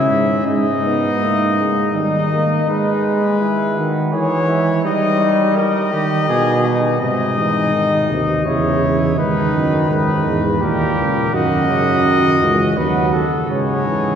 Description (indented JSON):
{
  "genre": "classical, imitative canzona for brass ensemble",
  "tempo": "83 BPM",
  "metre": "3/4",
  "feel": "straight",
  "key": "G# minor",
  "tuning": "A4 = 436 Hz",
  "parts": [
    { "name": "warm trumpet", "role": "melody", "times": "0.0-14.2 s", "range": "A4 to E5", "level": "-20 LUFS", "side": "left 4 dB", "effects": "none" },
    { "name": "warm flugelhorn", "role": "second line", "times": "0.0-14.2 s", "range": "D#4 to A#4", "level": "-22 LUFS", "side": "right 2 dB", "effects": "none" },
    { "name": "warm trombone", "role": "accompaniment", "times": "0.0-14.2 s", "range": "G#2 to C#4", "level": "-19 LUFS", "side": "right 1 dB", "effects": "none" },
    { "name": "mellow bass trombone", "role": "bass", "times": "0.0-2.6, 7.0-14.2 s", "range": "C#2 to D#3", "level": "-20 LUFS", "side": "right 1 dB", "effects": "none" }
  ],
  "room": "wet cathedral reverb, RT60 6.2 s",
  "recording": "heard from further back in the room",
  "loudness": "-14 LUFS",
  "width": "side -8 dB against mid",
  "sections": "0.0-2.7 A section; 2.7-7.0 B section; 7.0-14.2 A section",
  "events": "none",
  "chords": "0.5 D#sus4/G#; 1.9 D#; 2.7 G#m; 4.1 C#m/E; 4.8 D#/G; 6.3 G#m/B; 7.0 G#; 8.5 C#m/E; 9.2 G#m; 10.6 D#; 11.3 D#m/F#; 13.5 G#sus4"
}